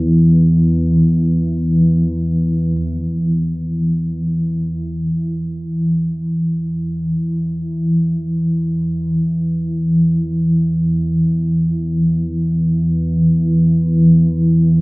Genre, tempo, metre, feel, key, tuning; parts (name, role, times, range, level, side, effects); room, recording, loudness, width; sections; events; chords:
ambient; free time; A4 = 440 Hz
deep rumbling drone; solo; 0.0-14.8 s; E2 to E3; -14 LUFS; equal; built-in reverb, phaser, diffuse ambient delay
wet cathedral reverb, RT60 6.7 s; small speaker sound; -14 LUFS; side -25 dB against mid
0.0-2.8 A section; 2.8-14.8 B section